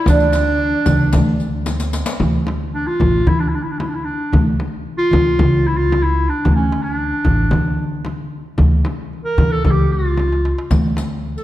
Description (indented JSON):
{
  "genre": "Arabic maqam ensemble",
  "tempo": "113 BPM",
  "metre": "4/4",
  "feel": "straight",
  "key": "D maqam nahawand",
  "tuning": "A4 = 440 Hz",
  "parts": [
    { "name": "clear clarinet", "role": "melody", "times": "0.0-11.4 s", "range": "C#4 to Bb4", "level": "-20 LUFS", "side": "equal", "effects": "none" },
    { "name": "dark studio violin section", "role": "second line", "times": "0.0-1.7 s", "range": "D4", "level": "-29 LUFS", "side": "right 1 dB", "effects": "none" },
    { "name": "oud", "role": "second line", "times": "0.0-1.6 s", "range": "D4", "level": "-21 LUFS", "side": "right 6 dB", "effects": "none" },
    { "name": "upright bass", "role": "bass", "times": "0.1-11.4 s", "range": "A1 to D3", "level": "-19 LUFS", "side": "equal", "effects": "none" },
    { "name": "darbuka", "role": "percussion", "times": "0.1-11.4 s", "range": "none", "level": "-23 LUFS", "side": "right 1 dB", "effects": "none" },
    { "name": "frame drum", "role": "percussion", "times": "0.1-11.1 s", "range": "none", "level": "-20 LUFS", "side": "left 1 dB", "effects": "none" },
    { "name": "riq", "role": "percussion", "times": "0.1-2.2, 10.7-11.4 s", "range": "none", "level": "-28 LUFS", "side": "left 4 dB", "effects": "none" }
  ],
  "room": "wet recital hall reverb, RT60 1.8 s",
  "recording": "dark, warm production",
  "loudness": "-15 LUFS",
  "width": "side -14 dB against mid",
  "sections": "0.0-2.2 A section; 2.2-11.4 B section",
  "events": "drum fill 1.7-2.2, 10.2-10.7",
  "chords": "none",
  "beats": "| 0.07 0.60 1.13 1.67 | 2.20 2.73 3.26 3.79 | 4.32 4.86 5.39 5.92 | 6.45 6.99 7.52 8.05 | 8.58 9.11 9.64 10.18 | 10.71 11.24"
}